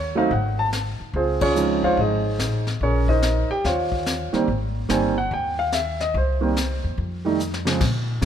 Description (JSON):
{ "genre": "jazz piano trio", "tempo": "144 BPM", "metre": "4/4", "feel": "swing 65% on 8ths", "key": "Ab major", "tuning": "A4 = 445 Hz", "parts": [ { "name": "warm concert grand piano", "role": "melody", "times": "0.0-8.2 s", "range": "Db3 to A5", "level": "-22 LUFS", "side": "right 2 dB", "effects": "none" }, { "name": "upright bass", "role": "bass", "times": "0.0-8.2 s", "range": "G1 to Bb2", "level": "-25 LUFS", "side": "left 1 dB", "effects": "none" }, { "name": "vintage brush drum kit", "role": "drums", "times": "0.3-8.2 s", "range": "brushed snare drum, crash cymbal, hi-hat, kick drum, ride cymbal, snare drum", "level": "-29 LUFS", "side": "left 3 dB", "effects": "none" } ], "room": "light reverb", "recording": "none", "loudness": "-20 LUFS", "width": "side -9 dB against mid", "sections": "0.0-7.8 A section", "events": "band accent 1.4; drum fill 7.4-7.8", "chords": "0.3 Gbsus2/Ab; 1.1 Dbmaj9; 2.8 Bbm11; 3.6 Eb7sus2; 4.5 Abmaj7; 7.0 F7(no3)" }